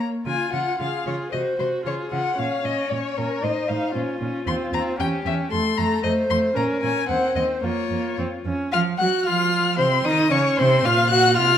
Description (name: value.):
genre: quick classical-period movement for string quartet.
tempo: 113 BPM.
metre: 2/4.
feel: straight.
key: Db major, Bb minor from 4.5 s.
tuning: A4 = 441 Hz.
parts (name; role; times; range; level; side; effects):
rich violin; melody; 0.0-11.6 s; Bb4 to Gb6; -25 LUFS; left 6 dB; none.
dark violin; second line; 0.0-11.6 s; F4 to Gb5; -25 LUFS; left 2 dB; none.
rich viola; accompaniment; 0.0-11.6 s; A3 to Gb4; -25 LUFS; right 2 dB; none.
warm cello; bass; 0.3-11.6 s; Eb2 to Gb3; -27 LUFS; right 4 dB; none.
room: wet recital hall reverb, RT60 1.7 s.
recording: none.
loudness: -20 LUFS.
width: side -9 dB against mid.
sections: 0.3-8.7 A section; 8.7-11.6 B section.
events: none.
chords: 0.3 Db; 1.3 C(b5, no3); 1.9 Db; 2.4 Bbm; 3.4 F7; 4.0 Bbm; 4.5 Bbsus4 (rootless); 5.0 Em6; 5.5 F; 6.6 Bbm; 7.1 Cdim; 7.6 Bbm; 8.2 F5; 8.7 N.C.; 9.8 Cm; 10.9 Bb5.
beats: | 0.26 0.80 | 1.33 1.86 | 2.39 2.91 | 3.44 3.96 | 4.48 5.00 | 5.52 6.04 | 6.57 7.10 | 7.64 8.19 | 8.73 9.26 | 9.79 10.32 | 10.86 11.38.